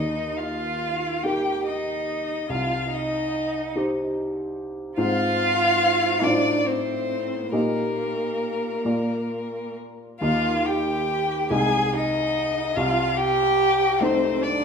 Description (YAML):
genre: classical, slow romantic movement for piano trio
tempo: 43-49 BPM (dotted quarters)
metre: 6/8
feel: rubato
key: Eb major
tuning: A4 = 439 Hz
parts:
  - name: dark violin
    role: melody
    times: 0.0-14.6 s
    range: Bb4 to Ab5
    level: -25 LUFS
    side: left 7 dB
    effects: none
  - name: warm cello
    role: second line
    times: 0.0-14.6 s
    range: Bb3 to Ab4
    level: -26 LUFS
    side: right 8 dB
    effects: none
  - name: warm baby grand piano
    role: accompaniment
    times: 0.0-14.6 s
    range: C2 to Eb5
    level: -26 LUFS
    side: equal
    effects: none
room: wet recital hall reverb, RT60 1.6 s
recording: none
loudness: -21 LUFS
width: side -6 dB against mid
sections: 0.0-14.6 A section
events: none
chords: 0.0 Eb; 2.5 Cm; 5.0 Fm/Ab; 6.2 F7/A; 7.5 Eb/Bb; 8.9 Bb; 10.2 Eb; 11.5 Ab/C; 12.8 Cm69